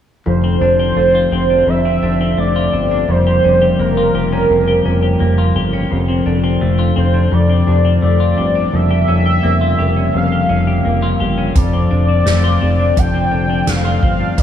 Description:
dream pop; 85 BPM; 4/4; straight; F major; A4 = 440 Hz
warm velvety synth lead; melody; 0.3-14.4 s; Bb4 to G5; -17 LUFS; right 1 dB; chorus, tape echo
mellow tonewheel organ; sustained chords; 0.3-14.4 s; Db3 to F4; -23 LUFS; right 3 dB; slow rotary speaker
semi-hollow electric guitar; arpeggios; 0.3-14.4 s; F2 to G4; -17 LUFS; left 5 dB; wide subtle chorus, tape echo
chorused synth bass; bass; 0.3-14.4 s; F1 to G1; -17 LUFS; equal
soft-mallet drum kit; drums; 11.6-14.4 s; hi-hat, kick drum, snare drum; -18 LUFS; equal
light reverb, small room ambience; -12 LUFS; side -9 dB against mid
0.3-14.4 A section
0.3 F6; 3.1 Bbm6/F; 5.9 F6; 8.7 Bbm6/F; 11.6 F6

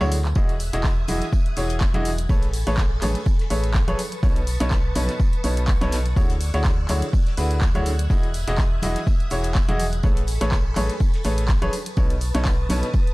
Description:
piano house; 124 BPM; 4/4; swing 55% on 16ths; E major; A4 = 440 Hz
bright upright piano; riff; 0.0-12.9 s; B2 to D#5; -27 LUFS; equal; sidechain pumping, dub echo
organ-like FM bass; bass; 0.0-12.8 s; E1 to D2; -24 LUFS; equal; sidechain pumping
damped 70s drum kit; drums; 0.0-13.1 s; hi-hat, snare drum, tambourine; -43 LUFS; right 1 dB; sidechain pumping on hats, high-pass filter on hats, high-pass filter on snare, sidechain pumping on perc, high-pass filter on perc, high-pass filter on room
congas and tambourine; percussion; 0.0-13.0 s; -35 LUFS; right 1 dB
punchy analog drum machine; drums; 0.1-13.1 s; handclaps, hi-hat; -32 LUFS; equal
string machine, violins; sustained chords; 0.4-13.1 s; A4 to G#6; -35 LUFS; equal; ensemble chorus, sidechain pumping
electronic kick drum; drums; 0.4-13.0 s; -20 LUFS; equal
small room ambience; dark, warm production; -19 LUFS; side -21 dB against mid
0.0-13.1 A section
break 0.0-0.4; drum fill 0.0-0.4
0.4 Emaj9; 2.3 Amaj9; 4.0 B9; 6.2 Dmaj9#11; 8.1 Emaj9; 10.0 Amaj9; 11.7 B9

